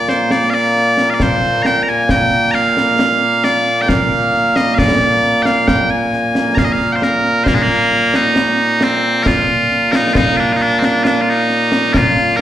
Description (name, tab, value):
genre	scottish traditional, Scottish pipe music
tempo	67 BPM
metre	3/4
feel	straight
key	Bb mixolydian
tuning	A4 = 438 Hz
part	loud bright bagpipes	melody	0.0-12.4 s	Bb2 to Bb5	-13 LUFS	equal	slapback echo
part	concert snare drum and concert bass drum	drums	0.1-12.3 s	none	-18 LUFS	equal	slapback echo
room	moderate club ambience, RT60 0.5 s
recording	live gig heard through the venue's PA, recital hall reverb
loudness	-12 LUFS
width	side -11 dB against mid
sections	0.0-7.5 A section; 7.5-12.4 B section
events	none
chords	none